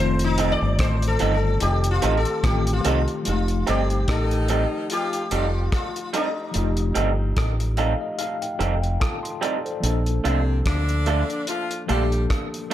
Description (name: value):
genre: lovers rock reggae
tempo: 73 BPM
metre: 4/4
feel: swing 56% on 16ths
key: unclear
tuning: A4 = 440 Hz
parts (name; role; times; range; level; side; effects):
- sitar; melody; 0.0-8.6 s; Eb4 to D5; -27 LUFS; left 3 dB; tape echo
- tine electric piano; accompaniment; 0.0-12.7 s; Eb3 to C6; -29 LUFS; left 3 dB; overdrive, fast stereo tremolo
- deep dub fingered electric bass; bass; 0.0-12.3 s; F1 to D2; -22 LUFS; equal; none
- cloth-damped thuddy drum kit; drums; 0.2-12.7 s; hi-hat, kick drum, rim click; -27 LUFS; equal; gated reverb
- electric guitar through a small old amp; stabs; 0.4-12.7 s; F3 to A4; -28 LUFS; right 5 dB; warbly pitch drift, dub echo
- edgy saxophone section; second line; 3.7-12.2 s; C3 to G4; -29 LUFS; left 2 dB; none
room: light reverb, studio ambience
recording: none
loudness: -20 LUFS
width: side -12 dB against mid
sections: 0.0-3.3 A section; 3.3-12.7 B section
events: sitar solo 0.0-3.3; tine electric piano fill 7.4-9.8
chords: 0.0 F9; 9.8 Bbmaj7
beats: 0.80 1.62 2.44 | 3.26 4.08 4.90 5.72 | 6.55 7.37 8.19 9.01 | 9.84 10.66 11.48 12.30